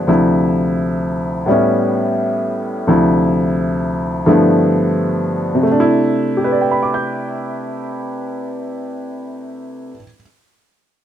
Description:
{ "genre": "solo jazz", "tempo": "86 BPM", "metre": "4/4", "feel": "swing 67% on 8ths", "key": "C major", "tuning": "A4 = 440 Hz", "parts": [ { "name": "clear upright piano", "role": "solo", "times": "0.0-10.2 s", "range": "D2 to G6", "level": "-15 LUFS", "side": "equal", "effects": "none" } ], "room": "light reverb", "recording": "dark, warm production", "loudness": "-14 LUFS", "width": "side -10 dB against mid", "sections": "0.0-5.7 A section; 5.7-8.5 B section", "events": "none", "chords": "0.1 Dm9; 1.5 A9; 2.9 Dm9; 4.3 G13; 5.7 C69", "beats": "| 0.07 0.77 1.47 2.17 | 2.87 3.57 4.26 4.96 | 5.66 6.36 7.06 7.76" }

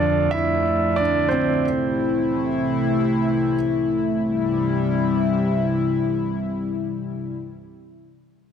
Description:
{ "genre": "pop", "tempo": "92 BPM", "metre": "4/4", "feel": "straight", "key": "C major", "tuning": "A4 = 440 Hz", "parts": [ { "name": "warm concert grand piano", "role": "accompaniment", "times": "0.0-3.6 s", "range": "F3 to A5", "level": "-21 LUFS", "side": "right 3 dB", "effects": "none" }, { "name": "chorused pulse-width pad", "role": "sustained chords", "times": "0.0-7.3 s", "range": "F2 to E4", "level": "-21 LUFS", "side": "left 2 dB", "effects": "none" } ], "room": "moderate plate reverb, RT60 2.7 s", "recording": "dense, heavily limited modern master", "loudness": "-19 LUFS", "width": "side -8 dB against mid", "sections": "0.0-4.2 A section; 4.2-6.9 B section", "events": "grand piano solo 0.0-4.2", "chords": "0.0 Dm/F; 1.6 Am; 4.2 C", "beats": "0.33 0.98 | 1.63 2.29 2.94 3.59 | 4.24 4.90 5.55 6.20" }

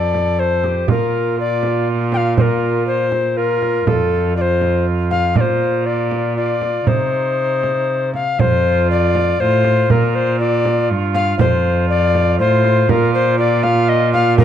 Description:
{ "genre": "classical, renaissance-style consort dance", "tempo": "120 BPM", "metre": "3/4", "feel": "straight", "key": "unclear", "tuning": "A4 = 443 Hz", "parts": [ { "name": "alto recorder", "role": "melody", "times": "0.0-14.4 s", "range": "A4 to G5", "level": "-18 LUFS", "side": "left 5 dB", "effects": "none" }, { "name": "mellow cor anglais", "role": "second line", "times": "0.0-14.4 s", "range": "Eb4 to A4", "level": "-23 LUFS", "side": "right 8 dB", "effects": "none" }, { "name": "rich cello", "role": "bass", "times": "0.0-14.4 s", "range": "F2 to C3", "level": "-18 LUFS", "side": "right 1 dB", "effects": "none" }, { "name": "frame drum", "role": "percussion", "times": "0.1-14.4 s", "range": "none", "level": "-19 LUFS", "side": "right 4 dB", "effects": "none" } ], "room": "light reverb", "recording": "dark, warm production", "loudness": "-14 LUFS", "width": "side -10 dB against mid", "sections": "0.0-8.4 A section; 8.4-14.4 A section", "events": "none", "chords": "0.0 F; 0.9 Bb5; 3.9 F; 5.4 Bb; 6.9 Cm; 8.4 F; 9.9 Bb; 11.4 F; 12.9 Bb5", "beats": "0.39 | 0.89 1.38 1.88 | 2.38 2.87 3.37 | 3.87 4.37 4.87 | 5.37 5.86 6.37 | 6.88 7.38 7.89 | 8.40 8.90 9.40 | 9.90 10.40 10.90 | 11.40 11.90 12.40 | 12.89 13.39 13.89 | 14.38" }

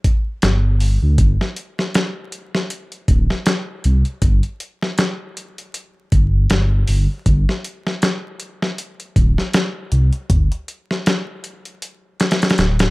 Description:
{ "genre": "trip hop", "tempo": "79 BPM", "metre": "4/4", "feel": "swing 56% on 16ths", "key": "unclear", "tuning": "A4 = 441 Hz", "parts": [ { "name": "dusty soul sampler-style drum kit", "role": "drums", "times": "0.0-12.9 s", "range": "hi-hat, kick drum, snare drum", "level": "-18 LUFS", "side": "equal", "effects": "small room ambience" }, { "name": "dark detuned saw bass", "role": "bass", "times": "0.4-12.9 s", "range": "D1 to D2", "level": "-15 LUFS", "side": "equal", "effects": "none" } ], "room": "little or no reverb", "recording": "vinyl crackle", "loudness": "-16 LUFS", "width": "side -23 dB against mid", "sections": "0.0-12.9 A section", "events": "none", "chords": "none", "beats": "0.43 | 1.19 1.95 2.71 3.46 | 4.22 4.98 5.74 6.50 | 7.26 8.02 8.78 9.54 | 10.30 11.06 11.82 12.58" }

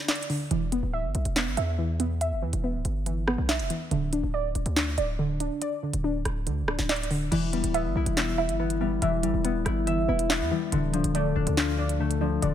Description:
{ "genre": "hip hop, drill", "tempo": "141 BPM", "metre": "4/4", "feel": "half-time", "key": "E phrygian", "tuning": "A4 = 440 Hz", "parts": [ { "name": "warbly dusty pluck", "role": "arpeggios", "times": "0.0-12.5 s", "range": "D3 to E5", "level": "-29 LUFS", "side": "right 1 dB", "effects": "chorus, ping-pong delay" }, { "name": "drill drum kit", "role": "drums", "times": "0.1-12.5 s", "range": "crash cymbal, handclaps, hi-hat, rim click, snare drum", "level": "-30 LUFS", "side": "equal", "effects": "none" }, { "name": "hard-hitting 808-style bass", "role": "bass", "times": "0.5-12.5 s", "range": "D1 to E2", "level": "-29 LUFS", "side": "equal", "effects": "none" }, { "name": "concert harp", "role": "accompaniment", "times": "7.3-12.5 s", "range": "D3 to E5", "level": "-27 LUFS", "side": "left 5 dB", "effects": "none" } ], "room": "light reverb", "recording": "none", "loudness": "-24 LUFS", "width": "side -10 dB against mid", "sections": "0.0-7.3 A section; 7.3-12.5 B section", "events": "break 0.0-0.5", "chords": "0.0 N.C.; 0.5 Em; 3.9 N.C.; 7.3 Em; 10.7 Dm", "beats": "0.08 | 0.51 0.94 1.36 1.79 | 2.21 2.64 3.06 3.49 | 3.91 4.34 4.76 5.19 | 5.62 6.04 6.47 6.89 | 7.32 7.74 8.17 8.60 | 9.02 9.45 9.87 10.30 | 10.72 11.15 11.57 12.00 | 12.43" }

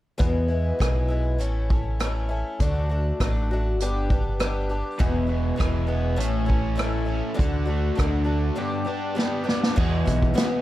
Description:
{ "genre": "folk rock and heartland rock", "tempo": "100 BPM", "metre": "4/4", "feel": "straight", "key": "unclear", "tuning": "A4 = 440 Hz", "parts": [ { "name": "picked twelve-string acoustic guitar", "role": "accompaniment", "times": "0.2-10.6 s", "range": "E2 to G4", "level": "-28 LUFS", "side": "left 2 dB", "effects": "none" }, { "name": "picked electric bass", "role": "bass", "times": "0.2-10.3 s", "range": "E1 to E2", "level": "-25 LUFS", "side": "equal", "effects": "none" }, { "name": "unplugged drum kit", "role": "drums", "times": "0.2-10.5 s", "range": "crash cymbal, hi-hat, kick drum, rim click, snare drum", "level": "-24 LUFS", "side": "equal", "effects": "none" }, { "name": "overdriven electric guitar", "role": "riff", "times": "5.0-10.6 s", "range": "E2 to D4", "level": "-28 LUFS", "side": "right 1 dB", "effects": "none" } ], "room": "small room ambience", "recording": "dark, warm production", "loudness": "-22 LUFS", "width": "side -14 dB against mid", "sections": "0.2-9.8 A section", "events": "drum fill 9.2-9.8", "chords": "0.2 E; 1.4 A; 2.6 D; 3.8 G; 5.0 E; 6.2 A; 7.4 D; 8.6 G; 9.8 E", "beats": "| 0.19 0.79 1.39 1.99 | 2.59 3.19 3.79 4.39 | 4.99 5.59 6.19 6.79 | 7.38 7.98 8.57 9.17 | 9.77 10.37" }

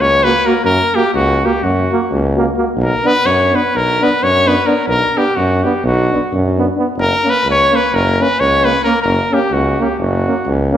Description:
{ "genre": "balkan folk, Balkan brass band", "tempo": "258 BPM (eighths)", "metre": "9/8", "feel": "straight", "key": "unclear", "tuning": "A4 = 440 Hz", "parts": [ { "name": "warm trumpet", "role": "melody", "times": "0.0-10.5 s", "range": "F#4 to C#5", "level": "-14 LUFS", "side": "left 1 dB", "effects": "none" }, { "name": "clear tuba", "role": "bass", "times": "0.0-10.8 s", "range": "F#1 to F#2", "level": "-17 LUFS", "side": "equal", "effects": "none" }, { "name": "warm euphonium", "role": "accompaniment", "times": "0.2-10.8 s", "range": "C#4 to F#4", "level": "-21 LUFS", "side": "left 3 dB", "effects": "none" }, { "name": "bright trombone", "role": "accompaniment", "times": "0.3-10.8 s", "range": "A#3 to B3", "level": "-21 LUFS", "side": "right 4 dB", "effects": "none" } ], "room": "wet recital hall reverb, RT60 1.6 s", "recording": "recorded in a church or concert hall", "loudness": "-12 LUFS", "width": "side -10 dB against mid", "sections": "0.0-10.8 A section", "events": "speeding up 0.0-10.8", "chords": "0.0 F#; 2.8 Bm; 7.0 F#", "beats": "0.18 0.42 | 0.66 0.89 1.13 1.36 1.60 1.84 2.07 2.31 2.54 | 2.78 3.01 3.25 3.48 3.71 3.95 4.18 4.41 4.65 | 4.88 5.11 5.34 5.58 5.81 6.04 6.27 6.50 6.74 | 6.97 7.20 7.43 7.66 7.89 8.12 8.36 8.59 8.82 | 9.05 9.28 9.51 9.74 9.97 10.20 10.43 10.66" }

